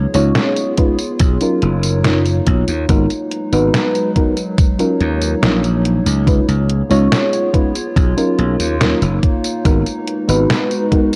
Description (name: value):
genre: vaporwave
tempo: 71 BPM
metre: 4/4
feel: straight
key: G# dorian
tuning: A4 = 440 Hz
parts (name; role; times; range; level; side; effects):
- warbly tape-like pad; sustained chords; 0.0-11.2 s; F#3 to C#5; -24 LUFS; equal; chorus, built-in reverb
- slap bass; bass; 0.0-10.5 s; F#1 to D#2; -19 LUFS; equal; none
- mellow FM electric piano; accompaniment; 0.1-11.1 s; F#3 to C#5; -20 LUFS; equal; subtle chorus, cassette tape, analog delay
- detuned 8-bit digital drum machine; drums; 0.1-11.2 s; hi-hat, snare drum, tambourine; -22 LUFS; equal; overdrive
- electronic kick drum; drums; 0.8-11.1 s; none; -17 LUFS; equal; overdrive
room: little or no reverb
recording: dry, gritty hardware recording, cassette tape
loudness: -16 LUFS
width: mono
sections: 0.0-11.2 A section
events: none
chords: 0.0 C#7; 1.2 Bmaj9#11; 2.9 G#m7; 4.6 D#m7; 6.3 C#7; 8.0 Bmaj9#11; 9.7 G#m7